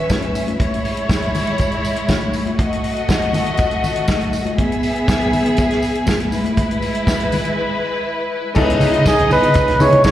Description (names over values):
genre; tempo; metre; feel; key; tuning
disco; 120 BPM; 4/4; straight; C# minor; A4 = 440 Hz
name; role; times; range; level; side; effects
warm studio string section; second line; 0.0-10.1 s; G#3 to E5; -19 LUFS; left 1 dB; slapback echo
warm soul drum kit; drums; 0.1-10.1 s; crash cymbal, hi-hat, kick drum, snare drum; -20 LUFS; equal; none
congas; percussion; 0.1-7.4 s; none; -25 LUFS; left 3 dB; none
tambourine; percussion; 0.1-10.1 s; none; -36 LUFS; right 4 dB; none
warm baby grand piano; accompaniment; 8.5-10.1 s; G#3 to B4; -21 LUFS; left 4 dB; slapback echo
mellow electric guitar; accompaniment; 8.6-10.1 s; B3 to E5; -23 LUFS; right 4 dB; wide subtle chorus, slapback echo
mellow French horn section; sustained chords; 8.6-10.1 s; C#3 to D#5; -25 LUFS; left 2 dB; none
hollow-body short-scale fingered electric bass; bass; 8.6-10.1 s; C#2 to C#3; -18 LUFS; equal; none
breathy flugelhorn; melody; 9.1-10.1 s; G#4 to C#5; -14 LUFS; right 2 dB; slapback echo
room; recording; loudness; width
moderate plate reverb, RT60 1.2 s, small room reverb; live gig heard through the venue's PA, recital hall reverb; -15 LUFS; side -12 dB against mid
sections
0.0-8.6 A section; 8.6-10.1 B section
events
break 7.6-8.6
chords
0.0 C#m7; 0.6 C#m; 2.6 D#dim/A; 4.6 E; 6.3 E/G#; 8.6 C#m9